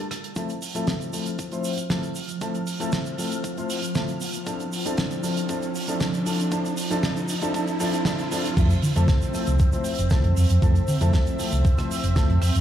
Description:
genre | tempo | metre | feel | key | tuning
nu-disco, nu disco | 117 BPM | 4/4 | straight | F major | A4 = 444 Hz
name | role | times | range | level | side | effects
lush unison pad | sustained chords | 0.0-12.6 s | F3 to F6 | -31 LUFS | right 1 dB | chorus, phaser, sidechain pumping
damped 70s drum kit | drums | 0.1-12.6 s | crash cymbal, hi-hat, rim click, shaker, snare drum | -30 LUFS | right 2 dB | none
dark grand piano | accompaniment | 0.4-12.3 s | F3 to C5 | -28 LUFS | left 2 dB | sidechain pumping, analog delay
electronic kick drum | drums | 0.4-12.3 s | none | -22 LUFS | equal | high-pass filter on kick
riser | sound effects | 2.8-8.6 s | none | -35 LUFS | right 2 dB | none
hollow-body short-scale fingered electric bass | bass | 8.6-12.6 s | F1 to D3 | -20 LUFS | equal | none
room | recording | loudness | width
light reverb, small room ambience | played on a big sound system in a bare room, large studio reverb | -22 LUFS | side -11 dB against mid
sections
0.4-8.6 A section; 8.6-12.6 B section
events
build-up 0.4-8.6; filter sweep on analog synth pad 0.4-8.6; riser 2.8-8.6; drop 8.6-12.6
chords
0.4 Fmaj7

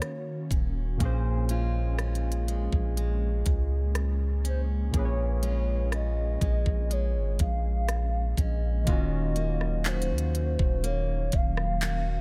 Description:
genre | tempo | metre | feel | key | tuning
contemporary R&B | 61 BPM | 4/4 | straight | Eb dorian | A4 = 437 Hz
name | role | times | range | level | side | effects
hollow clarinet-like synth lead | melody | 0.0-12.2 s | C5 to F5 | -37 LUFS | equal | chorus
soft electric-piano-like synth keys | accompaniment | 0.0-12.2 s | Bb2 to Db5 | -39 LUFS | equal | chorus
ethereal airy pad | sustained chords | 0.0-12.2 s | Eb3 to Gb4 | -43 LUFS | equal | ensemble chorus, built-in reverb
picked plugged-in steel-string acoustic guitar | arpeggios | 0.0-12.2 s | Bb2 to Gb4 | -40 LUFS | equal | none
trap drum kit | drums | 0.0-12.0 s | handclaps, hi-hat, kick drum, rim click | -31 LUFS | equal | none
long sustained 808-style bass | bass | 0.5-12.2 s | Eb1 to Eb2 | -30 LUFS | equal | none
room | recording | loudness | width
little or no reverb | none | -28 LUFS | mono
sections
0.0-8.9 A section; 8.9-12.2 B section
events
none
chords
0.0 Ebm7; 1.0 Bbm7; 8.9 Ebm7

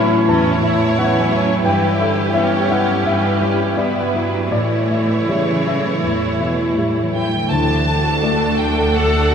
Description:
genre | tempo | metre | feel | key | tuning
cinematic | 78-88 BPM | 4/4 | rubato | D major | A4 = 445 Hz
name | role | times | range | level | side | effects
warm symphonic violin section | second line | 0.0-9.3 s | C#4 to C#5 | -22 LUFS | right 1 dB | none
clear symphonic viola section | accompaniment | 0.0-9.3 s | D3 to E4 | -23 LUFS | right 2 dB | none
warm grand piano | accompaniment | 0.0-9.3 s | D2 to C#6 | -20 LUFS | left 2 dB | none
concert harp | arpeggios | 0.0-9.3 s | G2 to A4 | -23 LUFS | equal | none
rich symphonic cello section | bass | 0.0-9.3 s | G2 to A4 | -23 LUFS | right 1 dB | none
warm symphonic violin section | melody | 7.1-9.3 s | F#5 to A5 | -21 LUFS | equal | none
mellow French horn section | sustained chords | 7.5-9.3 s | A3 to A4 | -23 LUFS | left 2 dB | none
rich symphonic double bass section | bass | 7.5-9.3 s | D2 | -21 LUFS | right 1 dB | none
room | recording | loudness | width
wet cathedral reverb, RT60 6.7 s | in a vast, echoing space | -15 LUFS | side -7 dB against mid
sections
0.0-7.5 A section; 7.5-9.3 B section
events
none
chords
0.0 Aadd9; 1.7 Em/G; 4.5 A7; 7.5 D

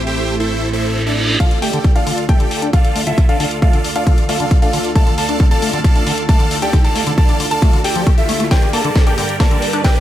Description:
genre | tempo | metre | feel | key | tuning
uplifting trance | 135 BPM | 4/4 | straight | D minor | A4 = 442 Hz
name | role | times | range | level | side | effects
supersaw chords | melody | 0.0-10.0 s | D4 to A5 | -21 LUFS | right 1 dB | phaser, sidechain pumping, digital delay
lush unison pad | sustained chords | 0.0-10.0 s | D2 to D5 | -24 LUFS | right 1 dB | chorus, sidechain pumping
fat analog bass | bass | 0.0-1.4 s | A1 | -21 LUFS | equal | sidechain pumping
reverse cymbal and riser | sound effects | 0.7-10.0 s | none | -26 LUFS | right 1 dB | none
warm concert grand piano | second line | 1.4-10.0 s | E5 to A5 | -24 LUFS | equal | sidechain pumping, digital delay
liquid acid bass | arpeggios | 1.4-9.9 s | D3 to D4 | -23 LUFS | left 2 dB | lush chorus, sidechain pumping, digital delay
electronic kick drum | drums | 1.4-9.9 s | none | -12 LUFS | equal | none
house drum kit | drums | 1.4-10.0 s | hi-hat, snare drum | -25 LUFS | left 2 dB | sidechain pumping on hats, high-pass filter on hats, high-pass filter on snare, high-pass filter on room
room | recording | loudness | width
light reverb | none | -12 LUFS | side -12 dB against mid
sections
0.0-1.4 A section; 1.4-10.0 B section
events
reverse cymbal 0.7-1.4; build-up 1.4-10.0; riser 1.4-10.0; filter sweep on acid bass 1.4-10.0; drum fill 8.5-10.0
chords
0.0 Am; 1.4 Dm; 8.5 Gm

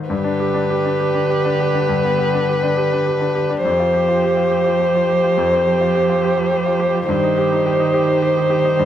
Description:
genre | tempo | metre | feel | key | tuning
neoclassical piano and strings | 104 BPM | 3/4 | rubato | unclear | A4 = 441 Hz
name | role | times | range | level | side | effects
clear baby grand piano | accompaniment | 0.0-8.9 s | F2 to C5 | -21 LUFS | left 1 dB | none
muted violin | melody | 0.1-8.9 s | B4 to C5 | -18 LUFS | left 2 dB | none
muted cello | second line | 0.1-8.9 s | D3 to F3 | -22 LUFS | right 6 dB | none
muted viola | accompaniment | 0.1-8.9 s | G4 | -26 LUFS | right 6 dB | none
room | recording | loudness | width
light reverb | none | -15 LUFS | side -10 dB against mid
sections
0.1-8.9 A section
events
none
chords
0.1 G; 3.6 Fsus2; 7.1 Cm/G

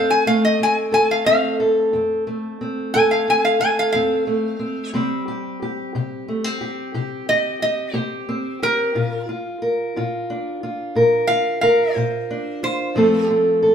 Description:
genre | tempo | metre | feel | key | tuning
acoustic country blues, solo or duo | 60 BPM (dotted quarters) | 12/8 | straight | F major | A4 = 440 Hz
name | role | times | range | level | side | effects
metal-body resonator slide guitar | melody | 0.0-13.3 s | Bb4 to Ab5 | -19 LUFS | left 1 dB | none
fingerpicked steel-string acoustic guitar | accompaniment | 0.0-13.7 s | F2 to Bb4 | -19 LUFS | equal | none
room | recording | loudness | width
wet stone room reverb, RT60 1.3 s | band playing live in one room | -18 LUFS | side -8 dB against mid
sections
0.0-13.7 A section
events
resonator guitar played with a steel bar solo 0.0-13.7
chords
0.0 F; 4.9 C5; 8.9 Bb; 13.0 F

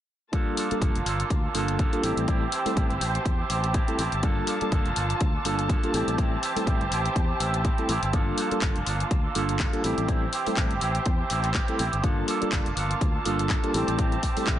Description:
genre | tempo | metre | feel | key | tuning
filtered disco house | 123 BPM | 4/4 | swing 56% on 16ths | G dorian | A4 = 442 Hz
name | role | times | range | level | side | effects
mellow tine electric piano | accompaniment | 0.3-14.6 s | G3 to A4 | -30 LUFS | equal | phaser, vintage 12-bit sampler grit, sidechain pumping, low-pass filter
dark chamber string section | sustained chords | 0.3-14.6 s | Bb3 to A5 | -33 LUFS | equal | vintage 12-bit sampler grit, sidechain pumping, low-pass filter
electric guitar with an envelope filter | riff | 0.3-14.6 s | E3 to A4 | -30 LUFS | right 4 dB | sidechain pumping, low-pass filter
electronic kick drum | drums | 0.3-14.6 s | none | -26 LUFS | equal | none
house drum kit | drums | 0.3-14.6 s | handclaps, hi-hat | -33 LUFS | left 3 dB | sidechain pumping on hats
fingered electric bass | bass | 0.7-14.6 s | F1 to E2 | -30 LUFS | equal | sidechain pumping, low-pass filter
room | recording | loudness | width
light reverb, digital ambience | nothing above 10.4 kHz | -23 LUFS | side -11 dB against mid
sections
0.3-14.6 A section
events
none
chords
0.3 Gm9; 2.0 Am7; 4.2 Gm9; 5.9 Am7; 8.1 Gm9; 9.8 Am7; 12.0 Gm9; 13.7 Am7

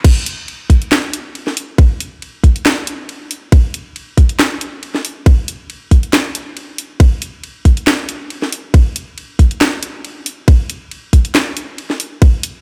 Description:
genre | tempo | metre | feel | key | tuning
dubstep | 138 BPM | 4/4 | swing 54% on 16ths, half-time | none | none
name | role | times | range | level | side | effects
electronic kick drum | drums | 0.0-12.3 s | none | -10 LUFS | equal | studio reverb
garage drum kit | drums | 0.0-12.5 s | crash cymbal, handclaps, hi-hat, ride cymbal, snare drum | -19 LUFS | equal | studio reverb
room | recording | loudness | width
little or no reverb | none | -14 LUFS | mono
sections
0.0-12.6 A section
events
drop 0.0-12.6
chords
none

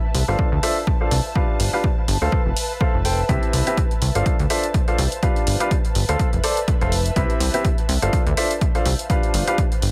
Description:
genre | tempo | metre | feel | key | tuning
piano house | 124 BPM | 4/4 | swing 56% on 16ths | D dorian | A4 = 440 Hz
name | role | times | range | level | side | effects
ethereal airy pad | texture | 0.0-9.9 s | B4 to A5 | -32 LUFS | equal | ensemble chorus, built-in reverb, sidechain pumping
plucky analog bass | bass | 0.1-9.9 s | F1 to D2 | -23 LUFS | equal | sidechain pumping
electronic hi-hat | drums | 0.1-9.9 s | none | -30 LUFS | equal | none
bright grand piano | riff | 0.3-9.6 s | C4 to G5 | -26 LUFS | equal | sidechain pumping, low-pass filter, dub echo
electronic kick drum | drums | 0.4-9.7 s | none | -24 LUFS | equal | none
room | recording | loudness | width
little or no reverb | none | -20 LUFS | mono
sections
0.0-9.9 A section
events
none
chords
0.4 Dm7; 1.4 G7; 2.3 F; 3.3 Cmaj7; 4.3 Dm7; 5.2 G7; 6.2 F; 7.2 Cmaj7; 8.1 Dm7; 9.1 G7

